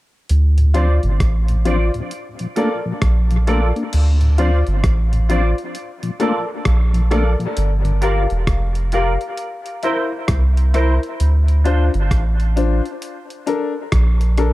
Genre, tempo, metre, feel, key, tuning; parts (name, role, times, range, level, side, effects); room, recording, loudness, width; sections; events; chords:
dub reggae; 66 BPM; 4/4; swing 62% on 16ths; D minor; A4 = 439 Hz
soft dub sub bass; bass; 0.3-14.5 s; E1 to D2; -15 LUFS; equal
dusty soul sampler-style drum kit; drums; 0.3-14.5 s; crash cymbal, hi-hat, kick drum, rim click; -22 LUFS; equal
mellow tonewheel organ; accompaniment; 0.6-7.9 s; D2 to D4; -24 LUFS; left 2 dB; slow rotary speaker, dub echo
clean electric guitar; accompaniment; 0.7-11.8 s; D4 to D5; -27 LUFS; right 4 dB; ensemble chorus, dub echo
warm baby grand piano; stabs; 0.7-14.5 s; D4 to F5; -24 LUFS; left 4 dB; dub echo
little or no reverb; echo-heavy mix; -15 LUFS; side -17 dB against mid
0.3-3.9 A section; 3.9-14.5 B section
0.3 Dm7; 2.1 Bbmaj7; 3.9 Dm7; 5.7 Bbmaj7; 7.6 Gm7; 9.4 C7; 11.2 Dm7; 13.0 Bbmaj7